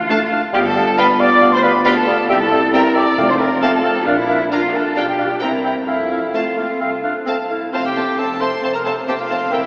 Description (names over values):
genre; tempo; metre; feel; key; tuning
quick classical-period movement for symphony orchestra; 135 BPM; 4/4; rubato; F major; A4 = 440 Hz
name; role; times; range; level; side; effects
silver concert flute; second line; 0.0-9.6 s; D5 to D6; -24 LUFS; equal; none
warm chamber cello section; bass; 0.0-9.7 s; F2 to D5; -22 LUFS; equal; none
warm chamber double bass section; bass; 0.0-9.7 s; F1 to F2; -31 LUFS; equal; none
rich chamber violin section; melody; 0.1-9.6 s; G5 to Bb5; -32 LUFS; equal; none
clear clarinet; second line; 0.1-9.6 s; A3 to E4; -28 LUFS; equal; none
mellow cor anglais; second line; 0.1-9.7 s; E4 to G5; -25 LUFS; equal; none
rich chamber violin section; second line; 0.1-9.7 s; E5 to C6; -32 LUFS; equal; none
mellow bassoon; accompaniment; 0.1-9.6 s; G3 to Bb3; -27 LUFS; equal; none
warm symphonic viola section; accompaniment; 0.1-9.6 s; A3 to C5; -29 LUFS; equal; none
dark French horn section; sustained chords; 0.5-9.7 s; B3 to Bb4; -25 LUFS; equal; none
timpani; percussion; 3.2-3.8 s; F2; -33 LUFS; equal; none
room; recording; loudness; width
wet church reverb, RT60 3.3 s; AM radio sound; -16 LUFS; mono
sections
0.0-7.7 A section; 7.7-9.7 A section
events
none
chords
0.0 Dm; 0.5 G7; 2.3 C7; 3.2 F; 4.1 Bb; 5.0 G7/B; 5.4 C7; 5.9 F